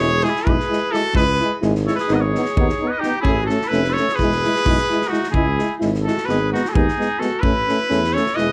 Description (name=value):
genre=balkan folk, Balkan brass band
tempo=257 BPM (eighths)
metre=9/8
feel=straight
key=C# minor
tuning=A4 = 440 Hz
part: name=clear trumpet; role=melody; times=0.0-8.5 s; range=F#4 to D#5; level=-24 LUFS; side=equal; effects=plate reverb
part: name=bright clarinet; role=second line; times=0.0-8.5 s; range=D#4 to B4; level=-29 LUFS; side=equal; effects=tape echo
part: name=mellow French horn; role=accompaniment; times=0.0-8.5 s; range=B3 to E4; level=-28 LUFS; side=equal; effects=none
part: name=warm euphonium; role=accompaniment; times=0.0-8.5 s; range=G#3 to B3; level=-28 LUFS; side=equal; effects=none
part: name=mellow tuba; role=bass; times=0.0-8.5 s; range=E1 to E2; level=-24 LUFS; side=equal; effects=none
part: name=vintage drum kit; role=percussion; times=0.2-8.4 s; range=kick drum, snare drum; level=-27 LUFS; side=equal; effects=none
room=light reverb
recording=none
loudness=-19 LUFS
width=mono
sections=0.0-8.5 A section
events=none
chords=0.0 E; 1.1 C#m; 2.1 G#m; 3.2 A; 4.2 E; 5.3 C#m; 6.3 G#m; 7.4 A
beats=0.20 0.43 0.67 0.90 | 1.13 1.36 1.60 1.83 2.07 2.30 2.53 2.77 3.00 | 3.23 3.47 3.70 3.93 4.17 4.40 4.63 4.87 5.10 | 5.33 5.57 5.80 6.03 6.27 6.50 6.73 6.96 7.20 | 7.43 7.66 7.90 8.13 8.36